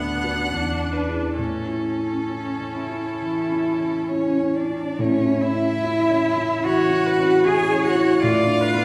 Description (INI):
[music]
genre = classical, slow romantic movement for piano quartet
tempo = 66-78 BPM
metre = 4/4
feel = rubato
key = A major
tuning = A4 = 440 Hz
[part]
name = rich violin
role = melody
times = 0.0-8.8 s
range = A4 to G#5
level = -32 LUFS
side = equal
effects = none
[part]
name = rich cello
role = second line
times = 0.0-8.8 s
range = C#4 to G#4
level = -25 LUFS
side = equal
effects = none
[part]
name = clear viola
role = accompaniment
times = 0.0-8.8 s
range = B3 to D5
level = -31 LUFS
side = equal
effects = none
[part]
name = dark baby grand piano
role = accompaniment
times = 0.0-8.8 s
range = D2 to B4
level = -25 LUFS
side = equal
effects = none
[sound]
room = wet recital hall reverb, RT60 1.3 s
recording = heard from further back in the room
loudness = -21 LUFS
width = mono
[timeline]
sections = 0.0-5.0 A section; 5.0-8.8 A section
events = none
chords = 0.0 Bm/D; 0.5 E7; 1.4 A; 8.2 G#dim7/A (rootless)